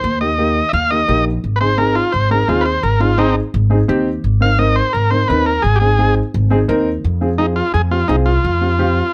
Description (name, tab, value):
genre	latin, cumbia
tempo	171 BPM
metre	4/4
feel	straight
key	unclear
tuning	A4 = 439 Hz
part	overdriven combo organ	melody	0.0-9.1 s	C4 to F5	-19 LUFS	equal	none
part	upright bass	bass	0.0-9.0 s	Ab1 to F2	-19 LUFS	equal	none
part	dark upright piano	accompaniment	0.2-9.0 s	Bb3 to Bb4	-21 LUFS	equal	none
room	light reverb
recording	close, detailed microphones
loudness	-15 LUFS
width	mono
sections	0.0-7.0 A section; 7.0-9.1 B section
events	transistor combo organ solo 0.0-7.0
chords	0.0 Eb; 1.4 Ab; 7.0 Fm